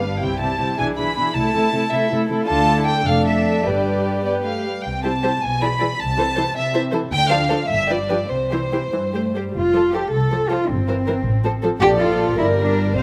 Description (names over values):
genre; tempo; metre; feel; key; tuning
quick classical-period movement for string orchestra; 96-107 BPM (dotted quarters); 6/8; rubato; C major, F major from 9.5 s; A4 = 440 Hz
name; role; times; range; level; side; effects
warm chamber violin section; melody; 0.0-13.0 s; C5 to B5; -24 LUFS; equal; none
warm chamber violin section; second line; 0.0-13.0 s; D4 to D5; -27 LUFS; equal; none
dark chamber viola section; accompaniment; 0.0-13.0 s; E3 to E4; -27 LUFS; equal; none
dark chamber cello section; bass; 0.0-13.0 s; F2 to A4; -25 LUFS; equal; none
dark chamber double bass section; bass; 0.0-13.0 s; F1 to D2; -27 LUFS; equal; none
room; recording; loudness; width
light reverb; close, detailed microphones; -20 LUFS; mono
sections
0.2-9.5 A section; 9.5-13.0 B section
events
none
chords
0.2 C; 0.8 E7/B; 1.4 Am/C; 2.5 Dm; 3.1 Dm/F; 3.7 G; 4.8 C; 5.4 E7/B; 6.0 Am/C; 7.1 Dm7; 7.7 G7; 8.3 C; 9.5 F; 10.7 C7/G; 11.3 F/A; 11.8 Bbmaj7; 12.4 Gm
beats
| 0.21 0.79 | 1.35 1.92 | 2.48 3.06 | 3.66 4.25 | 4.84 5.43 | 6.00 6.56 | 7.12 7.70 | 8.30 8.93 | 9.54 10.12 | 10.70 11.26 | 11.82 12.39 | 12.98